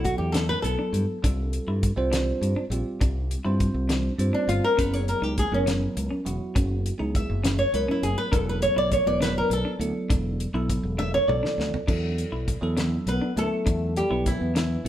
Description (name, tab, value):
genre	electric jazz fusion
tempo	68 BPM (dotted quarters)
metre	6/8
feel	straight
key	unclear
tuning	A4 = 441 Hz
part	flamenco guitar	melody	0.0-14.9 s	C#4 to E5	-26 LUFS	left 1 dB	none
part	bell-like tine electric piano	accompaniment	0.0-14.9 s	F#3 to C5	-30 LUFS	right 2 dB	phaser
part	clean electric guitar	stabs	0.0-14.8 s	C#4 to E4	-33 LUFS	left 1 dB	none
part	fingered electric bass	bass	0.0-14.9 s	E1 to G2	-27 LUFS	equal	none
part	damped 70s drum kit	drums	0.1-14.9 s	crash cymbal, hi-hat, kick drum, snare drum, toms	-27 LUFS	equal	none
part	warm trombone	second line	13.1-14.9 s	E3 to B3	-32 LUFS	left 3 dB	none
room	moderate stone room reverb, RT60 1.0 s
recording	band playing live in one room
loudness	-22 LUFS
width	side -11 dB against mid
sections	0.0-11.9 A section; 11.9-14.9 B section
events	nylon-string guitar solo 0.0-11.9; drum fill 11.0-11.9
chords	0.0 E9sus4; 1.2 Csus4; 4.8 F#9sus4; 8.3 E9sus4